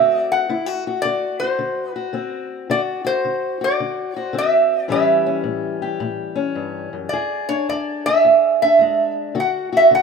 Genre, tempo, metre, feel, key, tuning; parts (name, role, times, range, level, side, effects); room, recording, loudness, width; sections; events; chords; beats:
acoustic country blues, solo or duo; 108 BPM; 4/4; swing 65% on 8ths; A4 = 441 Hz
metal-body resonator slide guitar; melody; 0.0-10.0 s; C5 to F#5; -16 LUFS; right 2 dB
fingerpicked steel-string acoustic guitar; accompaniment; 0.0-10.0 s; E2 to G#4; -24 LUFS; left 6 dB
light reverb; rough home demo mix; -17 LUFS; side -5 dB against mid
0.0-10.0 A section
0.0 D7; 4.9 A7; 7.1 E7; 9.4 D
| 0.48 1.03 1.58 2.14 | 2.69 3.25 3.80 4.36 | 4.91 5.47 6.02 6.58 | 7.13 7.69 8.24 8.80 | 9.35 9.91